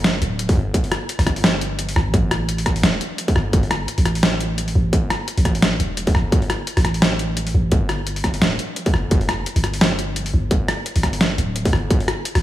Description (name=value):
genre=half-time drum and bass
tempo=172 BPM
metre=4/4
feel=swing 56% on 16ths, half-time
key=unclear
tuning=A4 = 441 Hz
part: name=long sustained 808-style bass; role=bass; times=0.0-12.4 s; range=D1 to A1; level=-21 LUFS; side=equal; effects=none
part: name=boom bap sampler-style drum kit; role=drums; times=0.0-12.4 s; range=hi-hat, rim click, snare drum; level=-21 LUFS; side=equal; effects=none
part: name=electronic kick drum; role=drums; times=0.5-12.0 s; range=none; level=-20 LUFS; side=equal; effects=distortion
room=light reverb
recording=small room ambience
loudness=-17 LUFS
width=side -14 dB against mid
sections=0.0-12.4 A section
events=none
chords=none